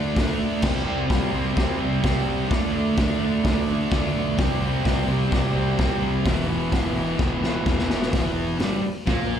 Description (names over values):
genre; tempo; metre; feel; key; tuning
garage rock duo or trio; 128 BPM; 4/4; straight; unclear; A4 = 440 Hz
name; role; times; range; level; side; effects
fuzz guitar; riff; 0.0-9.4 s; E2 to D4; -24 LUFS; right 1 dB; distortion
growling fingered electric bass; bass; 0.0-9.4 s; E1 to D2; -28 LUFS; left 1 dB; overdrive, tube saturation
raw garage drum kit; drums; 0.2-9.2 s; crash cymbal, hi-hat, kick drum, snare drum; -25 LUFS; equal; none
room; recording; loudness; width
little or no reverb; live gig heard through the venue's PA, club reverb; -20 LUFS; side -9 dB against mid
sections
0.0-8.1 A section; 8.1-9.4 B section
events
drum fill 7.2-8.1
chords
0.0 D5; 0.6 C5; 2.5 D5; 4.4 C5; 6.3 E5; 8.1 Edim